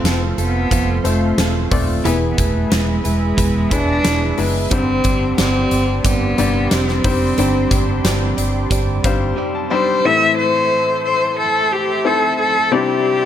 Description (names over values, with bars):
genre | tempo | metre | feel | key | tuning
piano-driven pop | 90 BPM | 4/4 | straight | A minor | A4 = 435 Hz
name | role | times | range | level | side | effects
dark cello | melody | 0.0-13.3 s | G#3 to E5 | -18 LUFS | equal | none
clear upright piano | accompaniment | 0.0-13.3 s | G2 to A5 | -22 LUFS | left 6 dB | none
warm analog pad | sustained chords | 0.0-13.3 s | G4 to C6 | -28 LUFS | right 1 dB | chorus
direct-recorded clean electric guitar | riff | 0.0-10.1 s | E3 to D5 | -25 LUFS | right 9 dB | none
vintage muted fingered electric bass | bass | 0.0-9.3 s | D#1 to G1 | -20 LUFS | equal | none
huge arena drum kit | drums | 0.1-9.2 s | hi-hat, kick drum, snare drum | -21 LUFS | equal | none
room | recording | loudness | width
studio reverb | none | -14 LUFS | side -10 dB against mid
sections
0.0-10.0 A section; 10.0-13.3 B section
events
upright piano fill 8.7-10.0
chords
0.0 F; 2.0 E; 4.7 Gsus4; 10.0 Am; 12.7 Cadd9